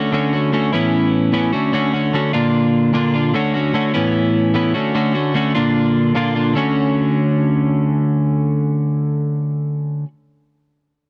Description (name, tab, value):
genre	rock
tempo	150 BPM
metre	4/4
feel	straight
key	unclear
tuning	A4 = 440 Hz
part	twelve-string electric guitar	solo	0.0-10.1 s	A2 to F#4	-18 LUFS	equal	none
room	little or no reverb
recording	dry, close 1970s-style studio recording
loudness	-18 LUFS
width	mono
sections	0.1-6.5 A section; 6.5-9.8 B section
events	none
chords	0.1 Dmaj7; 0.7 Aadd9; 1.5 Dmaj7; 2.3 Bb; 3.3 Dmaj7; 3.9 Aadd9; 4.7 Dmaj7; 5.5 Bb; 6.5 Dmaj7